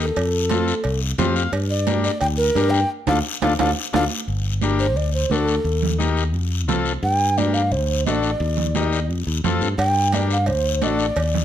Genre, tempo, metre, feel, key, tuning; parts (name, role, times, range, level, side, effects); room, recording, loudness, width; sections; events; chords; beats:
latin, cumbia; 174 BPM; 4/4; straight; G minor; A4 = 444 Hz
breathy mellow round clay ocarina; melody; 0.0-11.4 s; A4 to G5; -23 LUFS; right 1 dB; plate reverb
overdriven combo organ; accompaniment; 0.0-11.1 s; C4 to F5; -24 LUFS; left 5 dB
fingered electric bass; bass; 0.0-11.4 s; G1 to G2; -22 LUFS; equal
guiro; percussion; 0.0-11.4 s; -31 LUFS; left 7 dB
congas; percussion; 0.2-11.4 s; -28 LUFS; right 9 dB
cowbell and timbales; percussion; 0.2-4.0, 9.8-11.3 s; -29 LUFS; right 4 dB
light reverb; -18 LUFS; side -10 dB against mid
0.0-4.3 A section; 4.3-11.4 B section
transistor combo organ fill 1.0-1.5; band accent 2.9-4.3; drum fill 3.6-4.3; ocarina solo 4.3-11.4
0.2 F; 1.5 Gm; 2.9 Dm; 4.3 Gm; 5.0 D; 5.7 Eb; 6.3 F; 7.0 Gm; 7.7 D; 8.4 Eb; 9.1 F; 9.8 Gm; 10.5 D
| 0.16 0.51 0.85 1.19 | 1.53 1.88 2.22 2.56 | 2.91 3.25 3.59 3.94 | 4.28 4.63 4.97 5.31 | 5.66 6.00 6.35 6.69 | 7.04 7.38 7.72 8.07 | 8.41 8.76 9.10 9.44 | 9.79 10.13 10.48 10.82 | 11.16